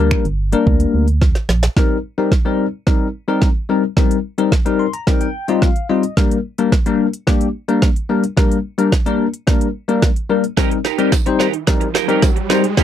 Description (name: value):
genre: dance-pop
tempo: 109 BPM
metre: 4/4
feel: straight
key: C minor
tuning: A4 = 440 Hz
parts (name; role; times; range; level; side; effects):
- bell-like tine electric piano; accompaniment; 0.0-12.8 s; G3 to C6; -17 LUFS; left 5 dB; lush chorus, sidechain pumping
- organ-like FM bass; bass; 0.0-1.7 s; G1 to D2; -15 LUFS; right 1 dB; sidechain pumping
- deep house drum kit; drums; 0.1-12.8 s; finger snaps, hi-hat, kick drum, snare drum; -16 LUFS; right 1 dB; none
- electric guitar at the edge of break-up; riff; 10.6-12.8 s; Eb4 to Bb4; -20 LUFS; right 18 dB; analog chorus
- tambourine; percussion; 10.6-12.8 s; none; -34 LUFS; right 24 dB; none
- riser; sound effects; 11.4-12.8 s; none; -25 LUFS; right 3 dB; none
room: little or no reverb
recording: dry, close 1970s-style studio recording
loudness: -14 LUFS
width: side -10 dB against mid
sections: 0.0-1.8 A section; 1.8-12.8 B section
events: drum fill 1.2-1.8, 1.8-12.8; build-up 1.8-12.8; tine electric piano fill 4.5-6.2; riser 11.4-12.8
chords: 0.0 Gm; 1.8 Cm7; 6.2 Gm; 10.6 Cm7